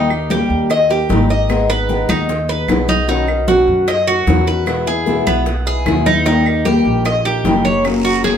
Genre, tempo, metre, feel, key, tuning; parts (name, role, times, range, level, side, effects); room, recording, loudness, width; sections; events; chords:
latin, Cuban son and guajira; 151 BPM; 4/4; straight; A4 = 441 Hz
picked old ladder-braced acoustic guitar; accompaniment; 0.0-8.4 s; B2 to G#4; -19 LUFS; left 3 dB
Cuban tres; arpeggios; 0.0-8.4 s; B3 to D#5; -17 LUFS; right 2 dB
upright bass; bass; 0.0-8.4 s; F#1 to F#2; -20 LUFS; right 1 dB
bongos; percussion; 0.1-8.4 s; -24 LUFS; left 2 dB
claves; percussion; 0.1-8.0 s; -28 LUFS; right 6 dB
congas; percussion; 0.1-8.4 s; -23 LUFS; left 2 dB
guiro; percussion; 7.8-8.4 s; -26 LUFS; right 4 dB
wet studio reverb, RT60 0.7 s; band playing live in one room; -13 LUFS; side -8 dB against mid
0.0-7.8 A section
0.0 D#; 1.5 G#m; 3.1 Badd9; 4.7 E; 6.3 D#; 7.8 F#add9